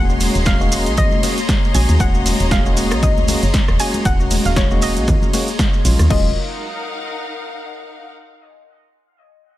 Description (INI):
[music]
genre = deep house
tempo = 117 BPM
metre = 4/4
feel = swing 56% on 16ths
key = Eb dorian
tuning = A4 = 440 Hz
[part]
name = soft round pluck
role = melody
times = 0.0-6.3 s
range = Db5 to Ab5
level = -26 LUFS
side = left 2 dB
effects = chorus, cassette tape, dub echo
[part]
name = hollow soft pad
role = sustained chords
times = 0.0-6.3 s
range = Ab3 to Db5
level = -30 LUFS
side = left 1 dB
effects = ensemble chorus, sidechain pumping
[part]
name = tine electric piano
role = stabs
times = 0.0-6.3 s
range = Gb3 to Gb4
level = -24 LUFS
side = equal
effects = medium tremolo, sidechain pumping, dub echo
[part]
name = woody FM bass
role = bass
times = 0.0-6.3 s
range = Eb1 to Eb2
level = -18 LUFS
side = equal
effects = sidechain pumping
[part]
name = rich studio string section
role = texture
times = 0.0-8.1 s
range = Eb4 to Bb5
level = -28 LUFS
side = left 3 dB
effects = sidechain pumping
[part]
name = string machine, violins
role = texture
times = 0.0-6.1 s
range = C6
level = -31 LUFS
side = equal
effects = ensemble chorus, sidechain pumping
[part]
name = maracas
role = percussion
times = 0.1-6.1 s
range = none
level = -28 LUFS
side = right 1 dB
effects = none
[part]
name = punchy analog drum machine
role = drums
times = 0.2-6.2 s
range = crash cymbal, hi-hat, ride cymbal, rim click, snare drum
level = -24 LUFS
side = right 1 dB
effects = overdrive
[part]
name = congas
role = percussion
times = 0.2-6.1 s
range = none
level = -27 LUFS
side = left 1 dB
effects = none
[part]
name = electronic kick drum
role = drums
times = 0.5-6.2 s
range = none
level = -18 LUFS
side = equal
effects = overdrive
[sound]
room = digital ambience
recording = none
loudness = -14 LUFS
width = side -15 dB against mid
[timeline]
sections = 0.0-6.1 A section; 6.1-8.2 B section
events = drop 0.0-6.1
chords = 0.0 Ab9sus4/Eb; 6.1 Ebm11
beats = 0.46 0.98 1.49 | 2.00 2.51 3.03 3.54 | 4.05 4.57 5.08 5.59 | 6.10 6.62 7.13 7.64